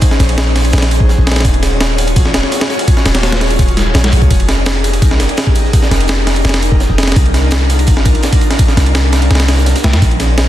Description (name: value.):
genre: drum and bass, jungle.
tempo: 168 BPM.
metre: 4/4.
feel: straight.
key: unclear.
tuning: A4 = 440 Hz.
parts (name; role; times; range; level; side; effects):
airy breathy pad; sustained chords; 0.0-10.5 s; Db4 to Db5; -21 LUFS; left 1 dB; chorus.
breakbeat sampler-style drum kit; drums; 0.0-10.5 s; kick drum, ride cymbal, snare drum; -12 LUFS; equal; none.
crunchy breakbeat drum kit; drums; 0.0-10.5 s; hi-hat, snare drum; -27 LUFS; right 3 dB; none.
warm 808-style bass; bass; 0.2-10.5 s; Eb1 to F2; -12 LUFS; equal; none.
room: studio reverb.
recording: dense, heavily limited modern master.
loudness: -9 LUFS.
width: side -13 dB against mid.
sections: 0.0-10.5 A section.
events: none.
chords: 0.0 Bbm11; 1.4 Ebm11; 4.3 Fm11; 7.2 Cm11.